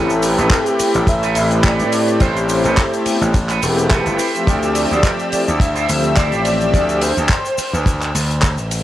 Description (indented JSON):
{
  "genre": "nu-disco, nu disco",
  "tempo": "106 BPM",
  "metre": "4/4",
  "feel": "swing 55% on 16ths",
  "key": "D dorian",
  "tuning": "A4 = 445 Hz",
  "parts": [
    { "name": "wide unison lead", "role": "melody", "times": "0.0-8.1 s", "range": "A4 to E5", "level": "-22 LUFS", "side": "equal", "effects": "lush chorus, cassette tape, analog delay" },
    { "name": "warm analog pad", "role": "accompaniment", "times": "0.0-7.0 s", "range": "F3 to E5", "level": "-19 LUFS", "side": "left 1 dB", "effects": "chorus, tremolo, sidechain pumping, cassette tape" },
    { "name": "rich symphonic string section", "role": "sustained chords", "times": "0.0-8.8 s", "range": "A4 to E6", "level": "-29 LUFS", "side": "left 2 dB", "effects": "sidechain pumping, cassette tape" },
    { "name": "electric guitar with an envelope filter", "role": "riff", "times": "0.0-6.5 s", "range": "C4 to C5", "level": "-26 LUFS", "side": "right 9 dB", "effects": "lush chorus, cassette tape" },
    { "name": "gritty slap bass", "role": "bass", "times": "0.0-8.8 s", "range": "E1 to A2", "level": "-19 LUFS", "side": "equal", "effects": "overdrive, sidechain pumping" },
    { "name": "damped 70s drum kit", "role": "drums", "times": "0.1-8.8 s", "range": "handclaps, hi-hat, ride cymbal, shaker", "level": "-22 LUFS", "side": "equal", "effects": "studio reverb, cassette tape" },
    { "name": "kick drum", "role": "drums", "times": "0.5-8.6 s", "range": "none", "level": "-16 LUFS", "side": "equal", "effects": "studio reverb, cassette tape" }
  ],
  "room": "moderate spring reverb, RT60 2.0 s, small room ambience",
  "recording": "home recording on cassette",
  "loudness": "-14 LUFS",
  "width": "side -13 dB against mid",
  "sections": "0.0-8.8 A section",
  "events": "none",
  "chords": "0.0 Am9; 4.2 Dm11",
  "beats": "0.51 1.07 1.64 | 2.21 2.77 3.34 3.90 | 4.47 5.04 5.60 6.17 | 6.74 7.30 7.87 8.43"
}